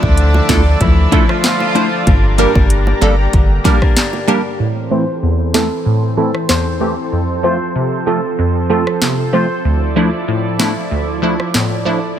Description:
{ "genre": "dancehall", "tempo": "95 BPM", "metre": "4/4", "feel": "straight", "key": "D minor", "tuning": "A4 = 440 Hz", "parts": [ { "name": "warm horn section", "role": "second line", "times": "0.0-2.5 s", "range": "D3 to F4", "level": "-20 LUFS", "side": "right 2 dB", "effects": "tape echo" }, { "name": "lush unison pad", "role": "sustained chords", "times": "0.0-12.2 s", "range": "E3 to Bb5", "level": "-21 LUFS", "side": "right 1 dB", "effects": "chorus, sidechain pumping, low-pass filter" }, { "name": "picked steel-string acoustic guitar", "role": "arpeggios", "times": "0.0-4.7 s", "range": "G2 to E4", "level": "-20 LUFS", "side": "left 5 dB", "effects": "none" }, { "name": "punchy sub bass", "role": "bass", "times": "0.0-3.6 s", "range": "G1 to D2", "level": "-13 LUFS", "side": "equal", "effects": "none" }, { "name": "afro-pop drum kit", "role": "drums", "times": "0.0-11.7 s", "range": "handclaps, hi-hat, kick drum, rim click, snare drum", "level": "-15 LUFS", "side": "equal", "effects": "none" }, { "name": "bongos", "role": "percussion", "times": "0.0-4.4 s", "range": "none", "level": "-26 LUFS", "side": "right 4 dB", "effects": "none" }, { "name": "wavetable chord stab", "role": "accompaniment", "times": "0.5-12.0 s", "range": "D2 to C5", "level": "-17 LUFS", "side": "equal", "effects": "phaser, low-pass filter" }, { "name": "steel pan", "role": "melody", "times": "4.9-9.5 s", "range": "A4 to C5", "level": "-21 LUFS", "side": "right 2 dB", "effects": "low-pass filter, tape echo" } ], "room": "light reverb, small room reverb", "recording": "none", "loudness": "-12 LUFS", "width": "side -10 dB against mid", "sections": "0.0-4.6 A section; 4.6-12.2 B section", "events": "filter sweep 4.6-12.2", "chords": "0.0 Dmadd9; 2.1 Gm; 4.6 Am; 7.1 F; 9.6 Dmadd9" }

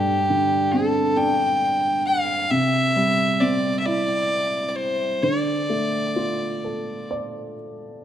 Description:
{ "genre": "celtic folk, Celtic slow air", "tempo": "42-45 BPM (dotted quarters)", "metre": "6/8", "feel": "rubato", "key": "D minor", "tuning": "A4 = 441 Hz", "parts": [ { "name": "rich fiddle", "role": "melody", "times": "0.0-7.1 s", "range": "G4 to G5", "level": "-22 LUFS", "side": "left 1 dB", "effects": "none" }, { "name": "dark upright piano", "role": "accompaniment", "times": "0.0-8.0 s", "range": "G2 to D5", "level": "-24 LUFS", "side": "right 1 dB", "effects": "none" } ], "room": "moderate scoring stage reverb, RT60 1.9 s", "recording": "dark, warm production", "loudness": "-19 LUFS", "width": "side -10 dB against mid", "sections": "0.0-8.0 A section", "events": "upright piano fill 6.6-8.0", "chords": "0.0 Gsus4; 2.5 Cadd9; 5.2 Dm" }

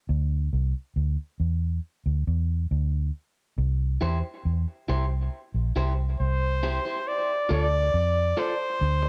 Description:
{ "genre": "dub reggae", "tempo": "69 BPM", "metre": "4/4", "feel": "straight", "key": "unclear", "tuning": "A4 = 440 Hz", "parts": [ { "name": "vintage muted fingered electric bass", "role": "bass", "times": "0.1-9.1 s", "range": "Bb1 to F2", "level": "-27 LUFS", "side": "equal", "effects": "none" }, { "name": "electric guitar at the edge of break-up", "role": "accompaniment", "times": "4.0-9.1 s", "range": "E4 to D5", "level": "-35 LUFS", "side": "equal", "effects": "tape echo" }, { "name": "clear flugelhorn", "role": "melody", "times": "6.2-9.1 s", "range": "C5 to D5", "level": "-28 LUFS", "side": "equal", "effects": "tape echo" } ], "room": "light reverb, small room ambience", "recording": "none", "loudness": "-27 LUFS", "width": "mono", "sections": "0.0-7.1 A section; 7.1-9.1 B section", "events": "break 0.0-3.6", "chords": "0.1 Cadd9 (rootless); 3.6 C; 7.1 Dm" }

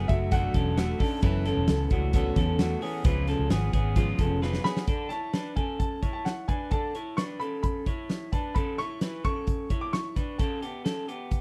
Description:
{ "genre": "jangly indie pop", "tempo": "131 BPM", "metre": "4/4", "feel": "straight", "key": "unclear", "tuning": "A4 = 439 Hz", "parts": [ { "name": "fingerpicked plugged-in steel-string acoustic guitar", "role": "accompaniment", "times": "0.0-4.9 s", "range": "F#2 to A4", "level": "-36 LUFS", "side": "equal", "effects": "tube saturation" }, { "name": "electric guitar through a small old amp", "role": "arpeggios", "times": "0.0-11.4 s", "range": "G#3 to C#5", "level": "-35 LUFS", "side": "equal", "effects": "slapback echo" }, { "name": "vintage muted fingered electric bass", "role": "bass", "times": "0.0-4.6 s", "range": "E1 to E2", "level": "-30 LUFS", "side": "equal", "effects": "none" }, { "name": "warm upright piano", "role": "melody", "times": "0.1-1.0, 4.6-11.3 s", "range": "E5 to D6", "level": "-37 LUFS", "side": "equal", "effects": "none" }, { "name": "big rock drum kit", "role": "drums", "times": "0.1-11.4 s", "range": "hi-hat, kick drum, snare drum", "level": "-30 LUFS", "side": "equal", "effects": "none" } ], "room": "little or no reverb", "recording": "dry, close 1970s-style studio recording", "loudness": "-28 LUFS", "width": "mono", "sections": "0.0-4.9 A section; 4.9-11.4 B section", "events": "drum fill 4.4-4.9", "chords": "0.0 F#m11; 3.0 C#7; 4.9 E7sus4; 8.6 A7" }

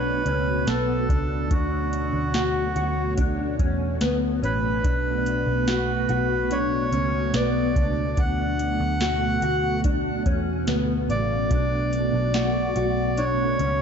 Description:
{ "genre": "dream pop", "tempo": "72 BPM", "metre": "4/4", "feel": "straight", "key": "D major", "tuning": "A4 = 440 Hz", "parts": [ { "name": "accordion", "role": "melody", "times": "0.0-13.8 s", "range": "F#4 to F#5", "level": "-27 LUFS", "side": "right 2 dB", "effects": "ping-pong delay" }, { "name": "string machine, cellos", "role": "sustained chords", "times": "0.0-13.8 s", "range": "B2 to C#5", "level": "-28 LUFS", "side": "right 1 dB", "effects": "ensemble chorus" }, { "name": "mellow electric guitar", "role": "arpeggios", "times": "0.0-13.8 s", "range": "C#3 to F#4", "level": "-28 LUFS", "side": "left 3 dB", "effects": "ensemble chorus, ping-pong delay" }, { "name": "vintage muted picked electric bass", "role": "bass", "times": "0.0-13.8 s", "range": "A1 to E2", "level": "-27 LUFS", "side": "equal", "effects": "none" }, { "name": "soft vintage rhythm box", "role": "drums", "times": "0.3-13.8 s", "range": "hi-hat, kick drum, snare drum", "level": "-26 LUFS", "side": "equal", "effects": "overdrive" } ], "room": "light reverb", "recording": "dark, warm production, nothing above 7.7 kHz", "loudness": "-21 LUFS", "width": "side -6 dB against mid", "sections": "0.0-13.8 A section", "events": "none", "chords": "0.0 Bm7; 1.5 Dmaj7; 4.8 Bm7; 8.2 Dmaj7; 11.5 Bm7" }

